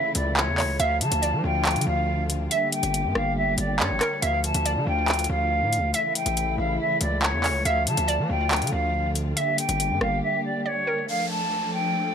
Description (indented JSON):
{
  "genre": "hip hop, drill",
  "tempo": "140 BPM",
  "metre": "4/4",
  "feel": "half-time",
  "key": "D harmonic minor",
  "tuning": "A4 = 440 Hz",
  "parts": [
    { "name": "silver concert flute", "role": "melody", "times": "0.0-12.1 s", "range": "C#5 to A5", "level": "-26 LUFS", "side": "equal", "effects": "none" },
    { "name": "hollow square pluck", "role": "second line", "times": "0.0-11.1 s", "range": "Bb4 to E5", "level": "-32 LUFS", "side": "right 4 dB", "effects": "chorus, ping-pong delay" },
    { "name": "dark chamber string section", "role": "sustained chords", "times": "0.0-12.1 s", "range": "C#3 to A4", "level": "-30 LUFS", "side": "equal", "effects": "none" },
    { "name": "drill drum kit", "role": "drums", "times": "0.1-10.1 s", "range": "handclaps, hi-hat, rim click", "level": "-26 LUFS", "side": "equal", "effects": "none" },
    { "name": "distorted 808-style bass", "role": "bass", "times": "0.2-10.2 s", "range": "G1 to F3", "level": "-27 LUFS", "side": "equal", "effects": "distortion" },
    { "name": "downlifter", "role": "sound effects", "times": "11.1-12.1 s", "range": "none", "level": "-33 LUFS", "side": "equal", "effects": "none" }
  ],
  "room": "little or no reverb",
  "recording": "none",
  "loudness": "-22 LUFS",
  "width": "side -7 dB against mid",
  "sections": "0.0-11.1 A section; 11.1-12.1 B section",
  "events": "break 10.2-11.1",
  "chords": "0.0 A; 0.8 Dm; 2.5 Gm; 4.2 Dm; 5.9 A; 7.7 Dm; 9.4 Gm; 11.1 Dm",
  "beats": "0.37 | 0.80 1.23 1.65 2.08 | 2.51 2.94 3.37 3.80 | 4.22 4.65 5.08 5.51 | 5.94 6.37 6.80 7.22 | 7.65 8.08 8.51 8.94 | 9.37 9.80 10.22 10.65 | 11.08 11.51 11.94"
}